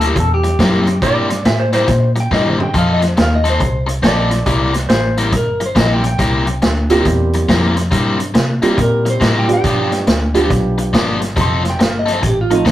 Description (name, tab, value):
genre	electric blues shuffle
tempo	139 BPM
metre	4/4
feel	swing 64% on 8ths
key	C mixolydian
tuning	A4 = 441 Hz
part	clean electric guitar	melody	0.0-12.7 s	Eb4 to C6	-20 LUFS	equal	none
part	biting overdriven guitar	riff	0.0-12.7 s	G2 to A4	-19 LUFS	left 2 dB	none
part	vintage muted fingered electric bass	bass	0.0-12.7 s	F1 to C3	-18 LUFS	equal	none
part	vintage drum kit	drums	0.0-12.7 s	hi-hat, kick drum, snare drum, toms	-17 LUFS	equal	none
part	clean lap steel guitar	second line	1.0-5.2 s	C5 to E5	-19 LUFS	right 1 dB	none
part	dark upright piano	accompaniment	6.9-12.7 s	F3 to G4	-16 LUFS	right 3 dB	none
room	moderate studio reverb, RT60 0.6 s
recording	rough rehearsal-room recording, tube saturation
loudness	-12 LUFS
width	side -13 dB against mid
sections	0.0-12.7 A section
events	drum fill 2.3-2.7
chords	0.0 C7; 2.7 F7; 4.5 C7; 9.6 G7; 11.4 F7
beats	0.16 0.59 | 1.02 1.45 1.89 2.31 | 2.75 3.18 3.61 4.04 | 4.47 4.90 5.33 5.76 | 6.19 6.62 7.05 7.48 | 7.92 8.35 8.78 9.21 | 9.64 10.07 10.50 10.93 | 11.37 11.80 12.23 12.66